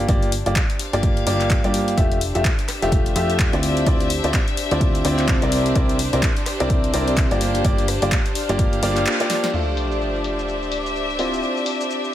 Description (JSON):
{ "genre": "piano house", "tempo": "127 BPM", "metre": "4/4", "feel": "swing 59% on 16ths", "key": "G dorian", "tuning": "A4 = 440 Hz", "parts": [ { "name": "clear upright piano", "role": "riff", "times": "0.0-12.1 s", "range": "A3 to E5", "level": "-23 LUFS", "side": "equal", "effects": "sidechain pumping, low-pass filter, dub echo" }, { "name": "plucky analog bass", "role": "bass", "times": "0.0-9.1 s", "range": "F1 to G2", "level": "-24 LUFS", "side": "equal", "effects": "sidechain pumping" }, { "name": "warm chamber string section", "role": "texture", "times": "0.0-12.1 s", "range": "F3 to F5", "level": "-26 LUFS", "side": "left 2 dB", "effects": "sidechain pumping" }, { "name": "electronic kick drum", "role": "drums", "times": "0.1-8.7 s", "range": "none", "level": "-21 LUFS", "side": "equal", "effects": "none" }, { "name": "house drum kit", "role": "drums", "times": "0.1-12.1 s", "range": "crash cymbal, handclaps, hi-hat, rim click, shaker, snare drum", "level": "-27 LUFS", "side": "left 2 dB", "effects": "low-pass filter on hats, low-pass filter on snare, low-pass filter on cymbals, low-pass filter on perc" }, { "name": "string machine, violins", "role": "sustained chords", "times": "9.5-12.1 s", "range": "D5 to D6", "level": "-30 LUFS", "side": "right 2 dB", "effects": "ensemble chorus, sidechain pumping" }, { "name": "sub drop", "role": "sound effects", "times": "9.5-11.4 s", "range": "none", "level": "-28 LUFS", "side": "equal", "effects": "none" } ], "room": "light reverb", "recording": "none", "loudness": "-18 LUFS", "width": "side -12 dB against mid", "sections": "0.0-9.5 A section; 9.5-12.1 B section", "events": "band accent 9.1; drum fill 9.3; impact 9.5-11.4; filter sweep on upright piano 9.5-12.1", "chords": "0.0 Gm7; 2.0 Fmaj9; 3.6 Dm9; 5.5 C9; 7.4 Gm7; 9.5 Fmaj9; 11.2 Dm9" }